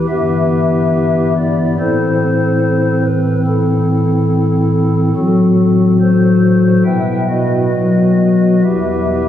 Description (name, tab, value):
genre	classical, chorale-style piece for pipe organ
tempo	70 BPM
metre	4/4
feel	rubato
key	E minor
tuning	A4 = 436 Hz
part	pipe organ, stopped flute	solo	0.0-9.3 s	E1 to G5	-11 LUFS	left 1 dB	none
room	wet church reverb, RT60 2.8 s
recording	recorded on a phone in the room, club reverb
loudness	-11 LUFS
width	side -10 dB against mid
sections	0.0-9.3 A section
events	none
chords	0.1 Em/G; 1.8 Am; 5.1 F#dim/A; 6.8 Em/B; 7.7 B; 8.6 Em